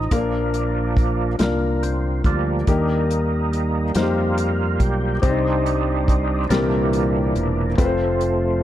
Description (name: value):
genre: slow gospel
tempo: 47 BPM (dotted quarters)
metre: 6/8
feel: straight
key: Eb major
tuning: A4 = 440 Hz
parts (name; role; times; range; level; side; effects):
- warm grand piano; accompaniment; 0.0-8.6 s; Bb2 to C5; -23 LUFS; left 4 dB; none
- overdriven tonewheel organ; sustained chords; 0.0-8.6 s; Bb2 to G4; -24 LUFS; right 3 dB; slow rotary speaker, chorus vibrato
- fingered electric bass; bass; 0.0-8.6 s; E1 to F2; -23 LUFS; equal; none
- warm soul drum kit; drums; 0.1-8.4 s; hi-hat, kick drum, snare drum; -21 LUFS; equal; none
room: studio reverb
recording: none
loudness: -18 LUFS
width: side -12 dB against mid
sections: 0.0-8.6 A section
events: tonewheel organ solo 0.0-8.6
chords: 0.1 Bb; 2.7 Eb; 5.2 Cm; 6.5 C7; 7.8 F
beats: | 0.11 1.39 | 2.67 3.95 | 5.23 6.51 | 7.78